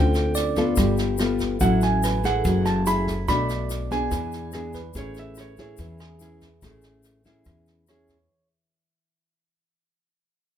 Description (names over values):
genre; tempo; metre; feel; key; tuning
bossa nova; 144 BPM; 4/4; straight; A major; A4 = 440 Hz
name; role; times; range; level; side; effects
warm concert grand piano; melody; 0.0-7.9 s; C#5 to B5; -28 LUFS; right 4 dB; none
bell-like tine electric piano; accompaniment; 0.0-8.5 s; C#4 to D5; -33 LUFS; right 8 dB; none
nylon-string guitar; accompaniment; 0.0-8.3 s; A2 to A4; -24 LUFS; left 2 dB; none
upright bass; bass; 0.0-8.3 s; F#1 to E2; -27 LUFS; left 1 dB; none
jazz brush drum kit; drums; 0.1-8.1 s; kick drum, rim click, snare drum; -30 LUFS; equal; none
egg shaker; percussion; 0.1-8.3 s; none; -38 LUFS; left 9 dB; none
room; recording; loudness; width
light reverb; minimal, uncompressed stereo recording; -20 LUFS; side -10 dB against mid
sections
0.0-8.3 A section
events
fade-out 0.0-8.3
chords
0.0 Dm7; 0.8 G9; 1.6 A6; 2.4 F#m9; 3.3 Bm7; 4.1 E7; 4.9 Amaj7